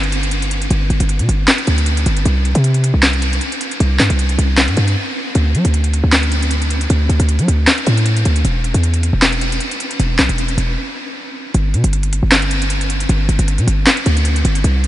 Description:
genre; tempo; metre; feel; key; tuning
hip hop, trap; 155 BPM; 4/4; half-time; unclear; A4 = 440 Hz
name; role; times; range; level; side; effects
hard-hitting 808-style bass; bass; 0.0-14.9 s; E1 to F#3; -14 LUFS; equal; none
trap drum kit; drums; 0.0-14.9 s; handclaps, hi-hat, snare drum; -17 LUFS; equal; none
room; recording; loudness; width
moderate huge ambient reverb, RT60 8.2 s; dreamy mix soaked in reverb, vinyl crackle, nothing above 10.4 kHz; -13 LUFS; side -14 dB against mid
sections
0.0-11.5 A section; 11.5-14.9 B section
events
break 5.0-5.4, 10.8-11.5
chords
none

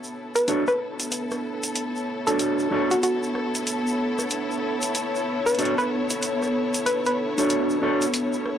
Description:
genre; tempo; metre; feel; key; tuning
glitch hop; 94 BPM; 4/4; swing 62% on 16ths; B minor; A4 = 440 Hz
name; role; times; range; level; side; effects
warbly tape-like pad; sustained chords; 0.2-8.6 s; B3 to C#5; -28 LUFS; equal; chorus, built-in reverb
egg shaker; percussion; 0.0-8.4 s; none; -34 LUFS; right 1 dB; none
clear studio string section; texture; 0.0-8.6 s; B3 to C#5; -30 LUFS; left 2 dB; none
woody wave-folded pluck; melody; 0.4-7.1 s; F#4 to B4; -26 LUFS; equal; chorus, analog delay
drum and bass drum kit; drums; 0.4-8.6 s; hi-hat, rim click; -29 LUFS; left 1 dB; none
mellow electric guitar; stabs; 0.5-8.0 s; D4 to C#5; -25 LUFS; right 1 dB; vintage 12-bit sampler grit, low-pass filter, analog delay
room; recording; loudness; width
moderate small room reverb, RT60 0.6 s; dry, gritty hardware recording, transformer saturation; -22 LUFS; side -9 dB against mid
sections
0.0-8.6 A section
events
build-up 0.0-8.6; filter sweep on ambient pad 0.0-8.6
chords
0.0 Bm9

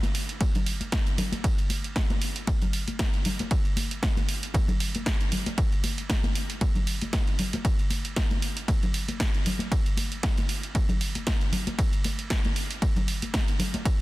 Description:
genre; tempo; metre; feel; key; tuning
house; 116 BPM; 4/4; swing 55% on 16ths; none; none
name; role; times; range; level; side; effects
punchy analog drum machine; drums; 0.0-14.0 s; hi-hat, ride cymbal, snare drum; -32 LUFS; right 2 dB; overdrive
congas; percussion; 0.0-13.8 s; none; -33 LUFS; left 2 dB; none
electronic kick drum; drums; 0.4-14.0 s; none; -26 LUFS; equal; overdrive
room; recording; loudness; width
little or no reverb; dense, heavily limited modern master; -24 LUFS; side -18 dB against mid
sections
0.0-14.0 A section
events
none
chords
none

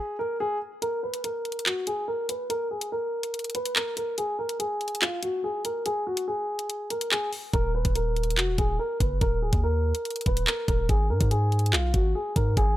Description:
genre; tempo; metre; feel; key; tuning
hip hop, drill; 143 BPM; 4/4; half-time; Eb minor; A4 = 440 Hz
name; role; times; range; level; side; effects
dark baby grand piano; melody; 0.0-12.7 s; F4 to Cb5; -28 LUFS; equal; low-pass filter
drill drum kit; drums; 0.8-12.7 s; handclaps, hi-hat, kick drum; -26 LUFS; equal; overdrive
long sustained 808-style bass; bass; 7.5-12.8 s; D1 to Ab2; -25 LUFS; equal; none
room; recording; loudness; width
little or no reverb; none; -24 LUFS; side -15 dB against mid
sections
0.8-12.8 A section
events
break 0.0-0.8; kick muted 0.8-7.5; filter sweep on grand piano 0.8-12.8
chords
0.0 N.C.; 7.5 Eb5; 10.9 N.C.

